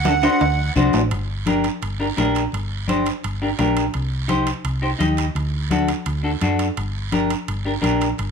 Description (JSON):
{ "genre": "latin, cumbia", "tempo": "170 BPM", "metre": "4/4", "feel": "straight", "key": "G harmonic minor", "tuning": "A4 = 440 Hz", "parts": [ { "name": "accordion", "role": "melody", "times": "0.0-0.7 s", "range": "F#5", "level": "-21 LUFS", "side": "right 8 dB", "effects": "light tremolo tuning" }, { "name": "semi-hollow electric guitar", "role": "accompaniment", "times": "0.0-8.1 s", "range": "D4 to Eb5", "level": "-21 LUFS", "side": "left 2 dB", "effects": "none" }, { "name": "hollow-body short-scale fingered electric bass", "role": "bass", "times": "0.0-8.3 s", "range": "G1 to F#2", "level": "-23 LUFS", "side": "equal", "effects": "none" }, { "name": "guiro", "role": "percussion", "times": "0.0-8.3 s", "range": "none", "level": "-34 LUFS", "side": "right 9 dB", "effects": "none" }, { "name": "congas", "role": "percussion", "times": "0.1-8.3 s", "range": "none", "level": "-26 LUFS", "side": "left 4 dB", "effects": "none" }, { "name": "timbales and cowbell", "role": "percussion", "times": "0.1-8.3 s", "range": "none", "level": "-28 LUFS", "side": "right 5 dB", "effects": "none" } ], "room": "light reverb", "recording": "minimal, uncompressed stereo recording", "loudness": "-18 LUFS", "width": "side -6 dB against mid", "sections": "0.0-1.1 A section; 1.1-8.3 B section", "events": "drum fill 0.1-1.1", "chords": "0.0 D7; 1.1 Gm; 3.9 Cm; 5.4 D; 6.8 Gm" }